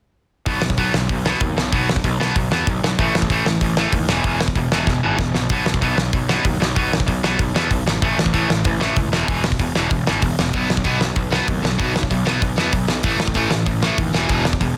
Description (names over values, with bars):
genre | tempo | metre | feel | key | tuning
punk rock | 191 BPM | 4/4 | straight | unclear | A4 = 443 Hz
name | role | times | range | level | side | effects
distorted electric guitar | riff | 0.5-14.8 s | E2 to B3 | -24 LUFS | equal | distortion
fuzz picked electric bass | bass | 0.5-14.7 s | E1 to E2 | -26 LUFS | equal | overdrive
loose indie drum kit | drums | 0.5-14.7 s | hi-hat, kick drum, snare drum | -23 LUFS | equal | none
sludgy distorted guitar | riff | 10.5-14.7 s | E2 to B3 | -27 LUFS | equal | overdrive
room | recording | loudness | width
little or no reverb | dense, heavily limited modern master | -19 LUFS | mono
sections
0.5-14.8 A section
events
drum fill 4.9-5.5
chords
0.5 B5; 3.0 A5; 4.1 E5; 5.5 B5; 8.0 A5; 9.1 E5; 10.5 B5; 13.0 A5; 14.1 E5